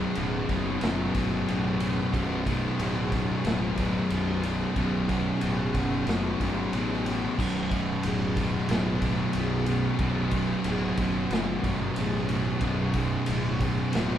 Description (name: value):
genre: stoner and doom metal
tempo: 92 BPM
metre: 4/4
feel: straight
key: B minor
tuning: A4 = 441 Hz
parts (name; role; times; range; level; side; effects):
- distorted electric guitar; riff; 0.0-14.2 s; B1 to B2; -32 LUFS; right 1 dB; distortion
- thick fuzz guitar; riff; 0.0-14.2 s; B1 to B2; -29 LUFS; left 3 dB; distortion
- thick fuzz guitar; riff; 0.0-14.2 s; B1 to B2; -33 LUFS; right 6 dB; distortion
- fuzz fingered electric bass; bass; 0.0-14.2 s; B0 to A1; -33 LUFS; equal; overdrive
- raw garage drum kit; drums; 0.2-14.1 s; crash cymbal, kick drum, ride cymbal, snare drum; -32 LUFS; equal; none
room: light reverb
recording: band playing live in one room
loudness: -24 LUFS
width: side -10 dB against mid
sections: 0.0-14.2 A section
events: none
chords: 0.0 Bm